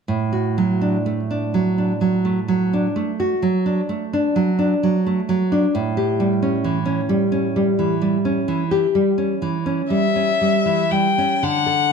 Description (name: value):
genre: romantic duo for violin and classical guitar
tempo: 38-45 BPM (dotted quarters)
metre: 12/8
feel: rubato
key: D major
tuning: A4 = 439 Hz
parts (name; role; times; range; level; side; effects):
- nylon-string guitar; accompaniment; 0.1-11.9 s; A2 to A4; -18 LUFS; right 1 dB; none
- rich violin; melody; 9.9-11.9 s; E5 to G5; -18 LUFS; left 6 dB; none
room: moderate recital hall reverb, RT60 1.8 s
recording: close, detailed microphones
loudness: -17 LUFS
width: side -6 dB against mid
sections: 0.1-11.4 A section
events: none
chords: 0.1 D/A; 5.7 A7